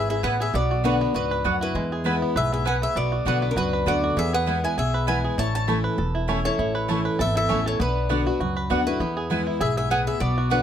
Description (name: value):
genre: bluegrass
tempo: 199 BPM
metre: 4/4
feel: swing 54% on 8ths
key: unclear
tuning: A4 = 440 Hz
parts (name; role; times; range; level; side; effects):
- mandolin; melody; 0.0-10.6 s; A#4 to A5; -27 LUFS; equal; plate reverb
- lap resonator guitar; second line; 0.0-10.6 s; C#4 to C#5; -32 LUFS; left 6 dB; none
- picked steel-string acoustic guitar; accompaniment; 0.0-10.6 s; E2 to F#4; -27 LUFS; left 1 dB; none
- bluegrass banjo; arpeggios; 0.0-10.6 s; G#3 to B4; -30 LUFS; right 3 dB; none
- upright bass; bass; 0.0-10.6 s; E1 to E2; -27 LUFS; equal; none
- mandolin; stabs; 0.2-10.6 s; A3 to A5; -27 LUFS; right 3 dB; none
room: light reverb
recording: close, detailed microphones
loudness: -21 LUFS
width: side -9 dB against mid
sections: 0.0-9.0 A section; 9.0-10.6 A section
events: none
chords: 0.0 E; 0.5 Bm; 1.8 E; 3.0 Bm; 4.2 E; 5.4 A; 7.8 Bm; 9.0 E